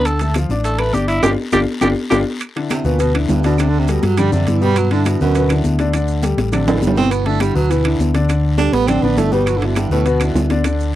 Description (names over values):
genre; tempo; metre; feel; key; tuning
Afro-Cuban jazz; 204 BPM; 4/4; straight; G major; A4 = 440 Hz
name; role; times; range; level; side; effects
growling tenor saxophone; melody; 0.0-2.2 s; E4 to B4; -19 LUFS; right 1 dB; none
warm grand piano; accompaniment; 0.0-10.9 s; B2 to D6; -20 LUFS; left 4 dB; none
fingered electric bass; bass; 0.0-11.0 s; G1 to G2; -18 LUFS; equal; none
claves; percussion; 0.1-10.8 s; none; -31 LUFS; right 7 dB; none
congas; percussion; 0.1-10.9 s; none; -23 LUFS; left 2 dB; none
guiro; percussion; 0.1-10.9 s; none; -36 LUFS; left 5 dB; none
maracas; percussion; 0.1-10.9 s; none; -36 LUFS; right 9 dB; none
timbales; percussion; 0.1-10.8 s; none; -23 LUFS; right 5 dB; none
clear baritone saxophone; second line; 2.7-10.5 s; D2 to D4; -20 LUFS; right 7 dB; none
room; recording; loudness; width
little or no reverb; dry, close 1970s-style studio recording; -14 LUFS; side -13 dB against mid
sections
0.0-2.4 A section; 2.4-11.0 A section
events
tenor saxophone solo 0.0-2.4; drum fill 1.2-2.4, 6.7-7.1; band accent 1.2-2.4; baritone saxophone solo 2.4-11.0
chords
0.1 Dmadd11; 1.2 G5; 2.4 Dsus2; 3.6 Dsus4; 4.8 G6; 5.9 Dsus4; 7.1 G6; 8.3 Dsus4; 9.5 G6